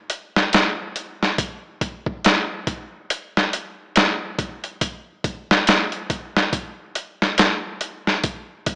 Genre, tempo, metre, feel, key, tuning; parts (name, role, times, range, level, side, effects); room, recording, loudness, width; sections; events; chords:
trip hop; 70 BPM; 4/4; swing 58% on 16ths
boom bap sampler-style drum kit; drums; 0.1-8.8 s; hi-hat, kick drum, snare drum; -21 LUFS; equal; studio reverb
moderate spring reverb, RT60 2.2 s; small speaker sound; -22 LUFS; mono
0.0-8.8 A section